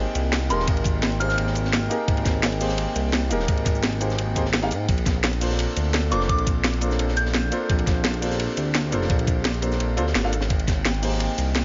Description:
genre	liquid drum and bass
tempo	171 BPM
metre	4/4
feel	straight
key	Bb major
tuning	A4 = 444 Hz
part	warm concert grand piano	accompaniment	0.0-11.6 s	Bb3 to F5	-30 LUFS	equal	digital delay
part	airy breathy pad	sustained chords	0.0-11.6 s	Bb3 to G5	-36 LUFS	equal	none
part	smooth synth bass	bass	0.0-11.6 s	Eb1 to Ab2	-28 LUFS	equal	tube saturation
part	crunchy breakbeat drum kit	drums	0.2-11.6 s	hi-hat, ride cymbal, snare drum	-35 LUFS	equal	high-pass filter on cymbals, high-pass filter on hats, high-pass filter on snare, high-pass filter on room
part	drum and bass drum kit	drums	0.2-11.6 s	cabasa, hi-hat, snare drum	-28 LUFS	equal	overdrive
part	soft synth bell	melody	0.5-1.3, 6.1-7.7 s	C6 to G6	-32 LUFS	equal	chorus, digital delay
part	electronic kick drum	drums	0.7-10.7 s	none	-25 LUFS	equal	none
room	light reverb, studio ambience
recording	nothing above 7.4 kHz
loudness	-23 LUFS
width	mono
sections	0.0-11.6 A section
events	none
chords	0.0 Abmaj9; 4.9 Bbmaj9; 10.3 Abmaj9

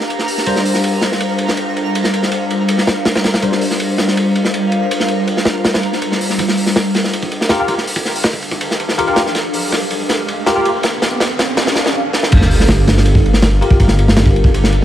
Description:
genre	drum and bass, jungle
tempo	162 BPM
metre	4/4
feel	straight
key	G minor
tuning	A4 = 440 Hz
part	ethereal airy pad	sustained chords	0.0-14.8 s	G3 to Bb5	-20 LUFS	equal	ensemble chorus, built-in reverb, phaser
part	bell-like tine electric piano	stabs	0.0-10.7, 13.6-14.8 s	G3 to C5	-20 LUFS	left 2 dB	ensemble chorus, low-pass filter, dub echo
part	crunchy breakbeat drum kit	drums	0.0-14.8 s	crash cymbal, hi-hat, kick drum, ride cymbal, snare drum	-16 LUFS	equal	high-pass filter on kick, high-pass filter on cymbals, high-pass filter on hats, high-pass filter on snare, high-pass filter on room
part	twinkling granular texture	texture	0.0-6.4 s	Bb5	-28 LUFS	right 4 dB	built-in reverb
part	riser and sub drop	sound effects	9.0-13.8 s	none	-22 LUFS	equal	none
part	detuned saw bass	bass	12.3-14.8 s	G1	-13 LUFS	equal	none
room	moderate digital room reverb, RT60 1.1 s, small room reverb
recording	vinyl crackle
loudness	-12 LUFS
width	side -11 dB against mid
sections	0.0-6.4 A section; 6.4-12.3 B section; 12.3-14.8 C section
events	build-up 6.4-12.3; riser 9.0-11.9; drum fill 9.4-11.9, 12.1; break 11.9-12.3; drop 12.3-14.8; impact 12.3-13.8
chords	0.5 Bbadd9/G; 6.4 Gm7

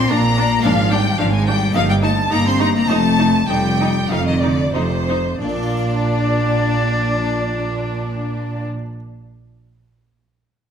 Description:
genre	classical, baroque-style concerto movement with solo episodes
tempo	88-111 BPM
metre	4/4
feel	straight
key	Bb major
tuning	A4 = 440 Hz
part	rich chamber violin section	melody	0.0-8.6 s	C5 to C6	-25 LUFS	left 4 dB	none
part	warm cello	melody	0.0-8.6 s	C3 to D4	-21 LUFS	left 4 dB	none
part	rich chamber violin section	second line	0.0-8.6 s	D4 to C6	-24 LUFS	left 1 dB	none
part	harpsichord	accompaniment	0.0-9.0 s	F2 to F5	-28 LUFS	right 1 dB	none
part	rich chamber double bass section	bass	0.0-8.6 s	F1 to Bb1	-22 LUFS	right 2 dB	none
part	warm chamber cello section	bass	0.0-8.6 s	F2 to Bb2	-24 LUFS	right 4 dB	none
part	rich symphonic viola section	accompaniment	0.1-8.6 s	D4 to Eb4	-25 LUFS	equal	none
room	wet recital hall reverb, RT60 1.3 s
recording	minimal, uncompressed stereo recording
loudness	-15 LUFS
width	side -8 dB against mid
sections	0.0-5.4 A section; 5.4-10.7 B section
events	slowing down 0.0-5.4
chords	0.0 Bb; 0.6 Bb7/Ab; 1.8 Eb/G; 2.9 F7; 5.4 Bb

